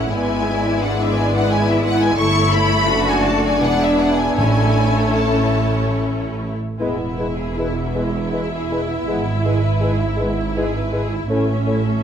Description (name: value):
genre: classical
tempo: 73-88 BPM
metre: 3/4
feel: rubato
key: A major, E major from 6.8 s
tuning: A4 = 440 Hz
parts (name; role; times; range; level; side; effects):
- clear symphonic violin section; melody; 0.0-12.0 s; E5 to C#6; -24 LUFS; left 2 dB; none
- clear symphonic violin section; second line; 0.0-12.0 s; G#3 to D5; -27 LUFS; left 2 dB; none
- rich symphonic viola section; accompaniment; 0.0-12.0 s; G#3 to E4; -24 LUFS; right 2 dB; none
- mellow French horn section; sustained chords; 0.0-11.6 s; E3 to E4; -23 LUFS; left 3 dB; none
- bright symphonic double bass section; bass; 0.0-12.0 s; E1 to A1; -22 LUFS; right 2 dB; none
- rich symphonic cello section; bass; 0.0-12.0 s; E2 to F#4; -25 LUFS; right 1 dB; none
- timpani; percussion; 4.4-5.6 s; A2; -22 LUFS; right 1 dB; none
- bright concert flute; second line; 6.8-11.8 s; B4 to C#5; -30 LUFS; left 2 dB; none
- warm clarinet; second line; 6.8-11.8 s; E4; -30 LUFS; left 5 dB; none
- mellow bassoon; accompaniment; 6.8-11.8 s; G#3 to A3; -27 LUFS; right 1 dB; none
room: moderate scoring stage reverb, RT60 1.6 s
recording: close, detailed microphones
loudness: -16 LUFS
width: side -8 dB against mid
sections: 0.0-6.8 A section; 6.8-12.0 B section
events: none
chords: 0.1 E7/G#; 2.2 A7/G; 2.9 D/F#; 3.6 E7; 4.4 A; 6.8 E; 9.1 E/G#; 11.3 A